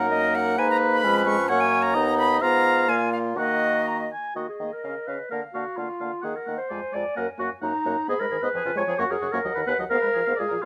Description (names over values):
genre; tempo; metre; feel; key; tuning
quick classical-period movement for wind quintet; 130 BPM; 2/4; rubato; Eb minor; A4 = 439 Hz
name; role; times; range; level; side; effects
silver concert flute; melody; 0.0-10.7 s; Eb5 to Db6; -31 LUFS; equal; none
warm oboe; second line; 0.0-10.7 s; F4 to Bb5; -30 LUFS; equal; none
warm French horn; accompaniment; 0.0-10.6 s; Db3 to Db4; -34 LUFS; equal; none
warm clarinet; accompaniment; 0.0-10.7 s; Db4 to D5; -30 LUFS; equal; none
warm bassoon; bass; 0.0-10.6 s; D#2 to Eb3; -31 LUFS; equal; none
room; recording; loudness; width
light reverb; none; -24 LUFS; mono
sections
0.0-4.4 A section; 4.4-10.7 A section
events
none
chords
0.0 Ebm/Gb; 0.6 Abm; 1.0 Db/F; 1.5 Gb; 1.9 B/D#; 2.4 Fdim/Ab; 2.9 Bb5; 3.4 Ebm; 4.4 Eb5; 4.8 Db; 5.3 Bb/D; 6.2 Ebm; 6.7 Ddim/F; 7.2 Ebm/Gb; 8.1 Abm; 8.6 Db/F; 9.0 Gb; 9.5 B/D#; 9.9 Fm/Ab